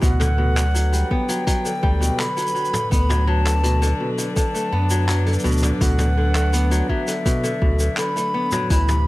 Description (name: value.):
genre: folktronica.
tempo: 83 BPM.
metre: 4/4.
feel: straight.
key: D major.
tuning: A4 = 440 Hz.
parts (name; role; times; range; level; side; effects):
bright baroque flute; melody; 0.0-9.1 s; E5 to B5; -26 LUFS; equal; ping-pong delay.
dark string quartet; sustained chords; 0.0-9.1 s; E3 to B4; -29 LUFS; equal; none.
kora; arpeggios; 0.0-9.1 s; B2 to B3; -24 LUFS; left 1 dB; none.
warm sub bass; bass; 0.0-9.1 s; D2 to F#2; -19 LUFS; equal; none.
electronic kick drum; drums; 0.0-8.8 s; none; -20 LUFS; equal; none.
vintage brush drum kit; drums; 0.0-9.0 s; handclaps, hi-hat, shaker, toms; -28 LUFS; equal; none.
room: small room ambience.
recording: none.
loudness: -17 LUFS.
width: side -18 dB against mid.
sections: 0.0-9.1 A section.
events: none.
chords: 0.0 Gmaj7/D; 2.9 D6.